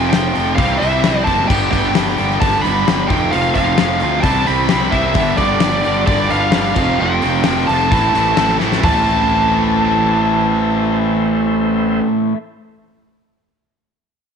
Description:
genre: classic rock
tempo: 131 BPM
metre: 4/4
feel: straight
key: A minor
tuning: A4 = 440 Hz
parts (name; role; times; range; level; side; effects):
- biting lead guitar; melody; 0.0-12.0 s; D5 to B5; -18 LUFS; right 1 dB; overdrive, slapback echo
- tonewheel organ; sustained chords; 0.0-12.0 s; D4 to C5; -28 LUFS; equal; none
- distorted electric guitar; riff; 0.0-12.4 s; F2 to C4; -20 LUFS; left 12 dB; overdrive
- overdriven semi-hollow guitar; riff; 0.0-12.4 s; F2 to G4; -19 LUFS; right 14 dB; none
- fuzz fingered electric bass; bass; 0.0-12.0 s; F1 to D2; -21 LUFS; equal; overdrive
- huge arena drum kit; drums; 0.1-8.9 s; crash cymbal, hi-hat, kick drum, snare drum, toms; -20 LUFS; left 4 dB; none
room: light reverb, studio reverb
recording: 1960s-style stereo with parts hard left and right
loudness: -13 LUFS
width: side -6 dB against mid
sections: 0.0-8.8 A section; 8.8-12.5 B section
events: drum fill 8.6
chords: 0.0 F; 0.6 C; 1.5 G; 3.1 F; 4.3 C; 5.2 G; 6.8 F; 7.9 Am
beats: 0.13 0.59 1.05 | 1.51 1.96 2.42 2.88 | 3.34 3.80 4.25 4.71 | 5.17 5.63 6.09 6.54 | 7.00 7.46 7.92 8.37 | 8.83 9.29 9.75 10.20 | 10.66 11.12 11.57 12.03

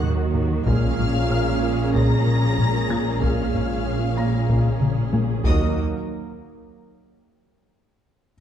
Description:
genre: cinematic, hybrid orchestral and electronic film score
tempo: 94 BPM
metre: 4/4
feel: straight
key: unclear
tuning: A4 = 440 Hz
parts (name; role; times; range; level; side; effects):
- dark symphonic violin section; melody; 0.0-5.8 s; Eb6 to Bb6; -35 LUFS; left 2 dB; none
- warm studio violin section; second line; 0.0-5.8 s; Eb5 to Bb5; -33 LUFS; left 4 dB; none
- rich symphonic viola section; accompaniment; 0.0-5.8 s; Bb3 to Ab4; -31 LUFS; right 1 dB; none
- mellow French horn section; sustained chords; 0.0-5.7 s; Eb4 to Bb4; -33 LUFS; left 3 dB; none
- warm analog pad; sustained chords; 0.0-5.8 s; Gb3 to Bb4; -30 LUFS; right 1 dB; lush chorus
- tight sequenced synth; arpeggios; 0.0-5.3 s; Bb3 to Ab4; -34 LUFS; right 2 dB; none
- smooth synth bass; riff; 0.0-5.3 s; Eb2 to Bb3; -26 LUFS; left 4 dB; none
- dark symphonic cello section; bass; 0.0-5.8 s; Eb2 to Eb3; -28 LUFS; right 1 dB; none
- dark symphonic double bass section; bass; 0.0-5.8 s; Bb1 to Eb2; -25 LUFS; right 3 dB; none
- taiko ensemble; drums; 0.0-6.7 s; none; -26 LUFS; left 1 dB; none
- felt-muted upright piano; texture; 0.0-5.8 s; Db5 to Bb6; -41 LUFS; left 2 dB; none
- warm trombone section; sustained chords; 0.7-5.7 s; Bb2 to Ab3; -35 LUFS; right 4 dB; none
room: moderate scoring stage reverb, RT60 1.6 s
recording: dark, warm production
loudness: -19 LUFS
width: side -9 dB against mid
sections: 0.0-5.8 A section; 5.8-8.3 B section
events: drum fill 4.8-5.8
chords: 0.0 Ebm; 0.7 Bbm7; 5.5 Ebm; 5.8 N.C.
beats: 0.03 | 0.67 1.30 1.94 2.58 | 3.22 3.86 4.49 5.13 | 5.77 6.41

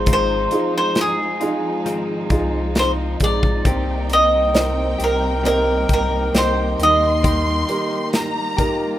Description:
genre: pop ballad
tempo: 67 BPM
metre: 4/4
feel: straight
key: C minor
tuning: A4 = 440 Hz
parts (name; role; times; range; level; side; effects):
- bowl-back mandolin; melody; 0.0-9.0 s; Ab4 to Eb5; -19 LUFS; equal; none
- felt-muted upright piano; accompaniment; 0.0-9.0 s; Eb3 to Eb5; -24 LUFS; right 2 dB; none
- warm studio string section; sustained chords; 0.0-9.0 s; C3 to F4; -28 LUFS; right 1 dB; none
- direct-recorded clean electric guitar; arpeggios; 0.0-9.0 s; Ab2 to G4; -29 LUFS; left 7 dB; none
- saturated sub bass; bass; 0.0-7.6 s; Ab1 to Eb2; -24 LUFS; equal; none
- modern studio drum kit; drums; 0.1-8.8 s; hi-hat, kick drum, snare drum; -21 LUFS; equal; none
- rich studio violin section; second line; 3.6-9.0 s; G5 to C6; -27 LUFS; left 1 dB; none
room: small room ambience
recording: rough home demo mix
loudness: -16 LUFS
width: side -12 dB against mid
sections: 0.0-9.0 A section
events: none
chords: 0.0 Fm7/Ab; 3.6 Cm7; 6.8 Eb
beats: | 0.07 0.96 1.86 2.75 | 3.65 4.55 5.44 6.34 | 7.23 8.13

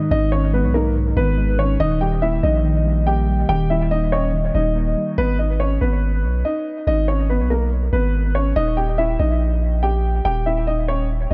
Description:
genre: hip hop, trap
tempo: 142 BPM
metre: 4/4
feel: half-time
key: G# harmonic minor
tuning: A4 = 439 Hz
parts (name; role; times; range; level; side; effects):
- dark baby grand piano; melody; 0.0-11.3 s; A#3 to G5; -24 LUFS; equal; low-pass filter, dub echo
- muted felt-like synth keys; accompaniment; 0.0-5.2 s; G#2 to D#5; -25 LUFS; equal; chorus, low-pass filter, dub echo
- long sustained 808-style bass; bass; 0.1-11.3 s; D#1 to B1; -22 LUFS; equal; none
room: studio reverb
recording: echo-heavy mix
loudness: -19 LUFS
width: mono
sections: 0.0-5.2 A section; 5.2-11.3 B section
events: none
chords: 0.0 G#m; 1.8 D#; 5.2 G#m; 8.6 D#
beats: | 0.11 0.53 0.95 1.38 | 1.80 2.22 2.65 3.07 | 3.49 3.91 4.33 4.76 | 5.18 5.60 6.03 6.45 | 6.87 7.29 7.71 8.14 | 8.56 8.98 9.40 9.83 | 10.25 10.67 11.10

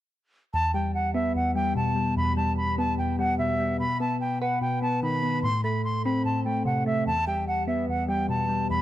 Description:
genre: hip hop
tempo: 147 BPM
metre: 4/4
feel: half-time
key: E minor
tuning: A4 = 440 Hz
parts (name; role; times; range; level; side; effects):
- reedy silver concert flute; melody; 0.5-8.8 s; E5 to C6; -27 LUFS; right 1 dB; digital delay
- soft electric-piano-like synth keys; accompaniment; 0.5-8.8 s; E2 to B4; -26 LUFS; left 1 dB; chorus
room: light reverb, studio reverb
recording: dark, warm production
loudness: -24 LUFS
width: side -13 dB against mid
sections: 0.5-8.8 A section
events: none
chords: 0.5 Em; 3.8 B; 5.4 Am; 7.1 Em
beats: | 0.54 0.94 1.35 1.76 | 2.17 2.58 2.98 3.39 | 3.80 4.21 4.62 5.03 | 5.43 5.84 6.25 6.66 | 7.07 7.47 7.88 8.29 | 8.70

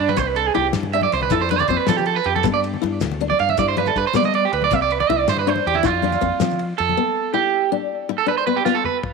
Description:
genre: highlife guitar band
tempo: 106 BPM (dotted quarters)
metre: 12/8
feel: straight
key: G mixolydian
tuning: A4 = 441 Hz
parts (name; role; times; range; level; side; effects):
- electric guitar at the edge of break-up; arpeggios; 0.0-9.0 s; E4 to F5; -19 LUFS; right 11 dB; tape echo
- fingered electric bass; bass; 0.0-6.9 s; C2 to G3; -26 LUFS; left 2 dB; none
- congas; percussion; 0.1-7.0 s; none; -28 LUFS; left 15 dB; none
- shekere; percussion; 0.1-6.5 s; none; -29 LUFS; right 4 dB; none
- fingerpicked steel-string acoustic guitar; accompaniment; 0.2-9.0 s; B3 to E4; -24 LUFS; left 15 dB; none
- damped 70s drum kit; drums; 0.2-9.1 s; kick drum, ride cymbal, snare drum, toms; -31 LUFS; left 6 dB; none
room: light reverb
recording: 1960s-style stereo with parts hard left and right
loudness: -17 LUFS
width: side -4 dB against mid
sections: 0.0-9.1 A section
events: clean electric guitar solo 0.0-9.1; drum fill 8.7-9.1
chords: 0.2 C; 1.3 F5; 2.4 G; 4.7 C; 5.8 F5; 7.0 G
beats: | 0.18 0.74 1.31 1.88 | 2.44 3.01 3.58 4.14 | 4.71 5.27 5.84 6.41 | 6.97 7.54 8.10 8.66

